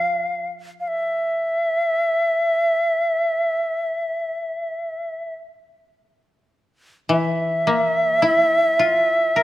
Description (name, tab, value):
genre	japanese traditional, Japanese chamber music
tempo	free time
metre	none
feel	none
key	unclear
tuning	A4 = 440 Hz
part	bright reedy shakuhachi	melody	0.0-9.4 s	E5 to F5	-19 LUFS	equal	none
part	koto	accompaniment	0.0-2.5, 7.1-9.4 s	E3 to Bb4	-22 LUFS	left 2 dB	none
room	light reverb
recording	close, detailed microphones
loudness	-18 LUFS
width	side -15 dB against mid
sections	0.0-9.4 A section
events	none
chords	none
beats	free time